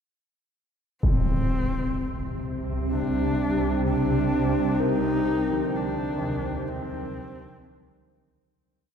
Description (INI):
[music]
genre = dark ambient drone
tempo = 64 BPM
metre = 4/4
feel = straight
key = C minor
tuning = A4 = 440 Hz
[part]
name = dark horsehead fiddle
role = melody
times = 1.0-8.1 s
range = C4 to Eb4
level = -29 LUFS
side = left 2 dB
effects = diffuse ambient delay
[part]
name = deep dark ambient pad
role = sustained chords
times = 2.6-8.6 s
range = C4 to G5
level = -30 LUFS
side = equal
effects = chorus, built-in reverb
[part]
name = swarming drone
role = drone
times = 2.1-8.7 s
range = C2 to C3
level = -27 LUFS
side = equal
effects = built-in reverb
[part]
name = impact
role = percussion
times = 1.0-1.2 s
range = none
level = -28 LUFS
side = equal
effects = low-pass filter on sfx
[part]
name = bronze singing bowl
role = texture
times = 4.8-8.6 s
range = Bb4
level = -36 LUFS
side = left 1 dB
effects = none
[part]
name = carillon bells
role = arpeggios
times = 5.5-8.9 s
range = D3 to Eb3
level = -36 LUFS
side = right 2 dB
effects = diffuse ambient delay
[sound]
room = wet cathedral reverb, RT60 6.9 s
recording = in a vast, echoing space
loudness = -23 LUFS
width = side -8 dB against mid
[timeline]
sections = 1.0-8.6 A section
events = fade-in on church bells 1.0-8.6; fade-out 4.8-8.6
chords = 1.0 C5